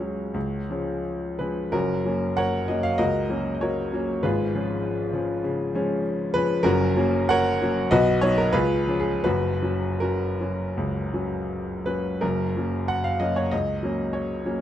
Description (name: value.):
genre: classical, romantic character piece for solo piano.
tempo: 77-101 BPM.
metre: 4/4.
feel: rubato.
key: F# major.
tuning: A4 = 440 Hz.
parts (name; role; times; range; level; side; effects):
warm upright piano; solo; 0.0-14.6 s; F#1 to F#5; -22 LUFS; equal; none.
room: moderate recital hall reverb, RT60 1.6 s.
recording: close, detailed microphones.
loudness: -22 LUFS.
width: side -11 dB against mid.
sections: 0.0-12.2 A section; 12.2-14.6 B section.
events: none.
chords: 0.3 C#; 1.7 F#; 4.2 C#7/G#; 6.7 F#; 7.9 B; 8.5 C#7; 9.2 F#.